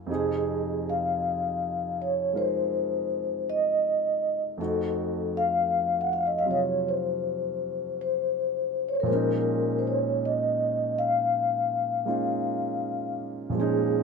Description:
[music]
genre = jazz ballad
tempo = 54 BPM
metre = 4/4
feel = swing 67% on 8ths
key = unclear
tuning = A4 = 439 Hz
[part]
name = warm concert grand piano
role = accompaniment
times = 0.0-14.0 s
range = F2 to Bb4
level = -30 LUFS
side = right 2 dB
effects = none
[part]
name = vibraphone with soft mallets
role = melody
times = 0.1-14.0 s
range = Ab4 to Gb5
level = -26 LUFS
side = left 2 dB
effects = none
[sound]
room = moderate echo chamber reverb, RT60 1.9 s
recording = close, detailed microphones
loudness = -25 LUFS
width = side -5 dB against mid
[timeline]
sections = 0.0-14.0 A section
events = none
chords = 0.1 Fm7; 4.6 F7b9; 9.1 Bbm7

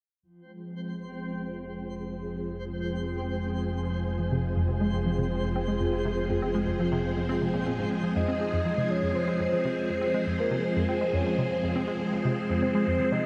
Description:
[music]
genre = ambient, sequencer-driven space music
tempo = 121 BPM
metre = 4/4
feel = straight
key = F minor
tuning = A4 = 439 Hz
[part]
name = phased string machine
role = sustained chords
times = 0.2-13.3 s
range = F3 to C5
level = -32 LUFS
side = equal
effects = ensemble chorus, phaser, shimmer reverb
[part]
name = fat analog bass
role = bass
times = 0.2-8.1 s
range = F1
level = -36 LUFS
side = equal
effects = none
[part]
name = twinkling granular texture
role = texture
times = 0.5-13.3 s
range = C4 to F5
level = -42 LUFS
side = equal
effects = built-in reverb, shimmer reverb
[part]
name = analog pluck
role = riff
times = 4.2-13.2 s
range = F2 to C4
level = -33 LUFS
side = equal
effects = chorus, tape echo
[part]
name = soft octave-layered synth lead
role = melody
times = 8.2-13.3 s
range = Bb4 to Eb5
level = -32 LUFS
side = equal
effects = chorus, cassette tape, shimmer reverb, tape echo
[sound]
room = wet cathedral reverb, RT60 5.7 s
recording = in a vast, echoing space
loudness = -28 LUFS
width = mono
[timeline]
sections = 0.2-8.2 A section; 8.2-13.3 B section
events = fade-in on analog synth bass 0.2-8.2; filter sweep on string machine 0.2-8.2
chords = 0.2 Fm

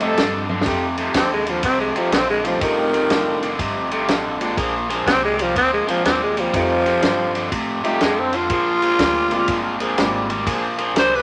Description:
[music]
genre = electric blues shuffle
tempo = 122 BPM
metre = 4/4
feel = swing 65% on 8ths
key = unclear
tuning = A4 = 440 Hz
[part]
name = clear grand piano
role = accompaniment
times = 0.0-10.3 s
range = G3 to F4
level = -29 LUFS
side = equal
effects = none
[part]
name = overdriven electric guitar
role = riff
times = 0.0-11.2 s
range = F2 to G3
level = -25 LUFS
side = equal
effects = none
[part]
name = mellow horn section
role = stabs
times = 0.0-11.2 s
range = G3 to A4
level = -29 LUFS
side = equal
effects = none
[part]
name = upright bass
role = bass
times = 0.0-11.2 s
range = F1 to A2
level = -35 LUFS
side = equal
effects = none
[part]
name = warm soul drum kit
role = drums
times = 0.0-11.1 s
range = kick drum, ride cymbal, snare drum, toms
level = -26 LUFS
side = equal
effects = none
[part]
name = growling tenor saxophone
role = melody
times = 1.2-11.2 s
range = Eb3 to C5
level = -21 LUFS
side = equal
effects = none
[sound]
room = light reverb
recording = none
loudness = -19 LUFS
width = mono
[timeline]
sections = 0.7-11.2 A section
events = drum fill 0.4; tenor saxophone solo 0.7-11.2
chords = 0.0 F9; 4.6 Bb9; 6.5 F9; 8.5 Bb9

